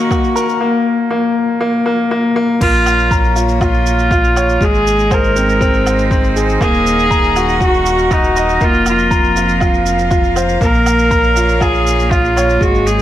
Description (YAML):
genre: piano and strings electronica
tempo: 120 BPM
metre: 4/4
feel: straight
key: Bb minor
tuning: A4 = 440 Hz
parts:
  - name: rich viola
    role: melody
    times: 0.0-13.0 s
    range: Eb4 to Bb4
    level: -16 LUFS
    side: right 1 dB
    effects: tape echo
  - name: rich string quartet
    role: sustained chords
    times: 0.0-13.0 s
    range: Bb2 to Gb5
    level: -22 LUFS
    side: right 2 dB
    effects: sidechain pumping
  - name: warm upright piano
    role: riff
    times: 0.0-13.0 s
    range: Ab3 to Bb5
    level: -15 LUFS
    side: left 2 dB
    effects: tape echo
  - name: round analog bass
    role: bass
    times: 0.0-13.0 s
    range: Eb1 to Bb1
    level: -18 LUFS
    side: equal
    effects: sidechain pumping, high-pass filter
  - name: electronic kick drum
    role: drums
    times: 0.1-12.7 s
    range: none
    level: -16 LUFS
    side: equal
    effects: none
  - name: electronic shaker, woodblock and crash cymbal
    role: drums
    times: 0.1-13.0 s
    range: none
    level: -27 LUFS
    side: right 4 dB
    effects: high-pass filter on perc, high-pass filter on cymbals, high-pass filter on room
room: moderate scoring stage reverb, RT60 1.9 s, studio reverb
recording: none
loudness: -11 LUFS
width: side -12 dB against mid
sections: 0.0-2.6 A section; 2.6-13.0 B section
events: build-up 0.0-2.6; drop 2.6-13.0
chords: 0.0 Ebm; 0.6 N.C.; 2.6 Bbm; 4.6 Abadd9; 6.6 Ebm; 8.6 Fsus4; 10.6 Bbm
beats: 0.11 | 0.61 1.11 1.61 2.11 | 2.61 3.11 3.61 4.11 | 4.61 5.11 5.61 6.11 | 6.61 7.11 7.61 8.11 | 8.61 9.11 9.61 10.11 | 10.61 11.11 11.61 12.11 | 12.61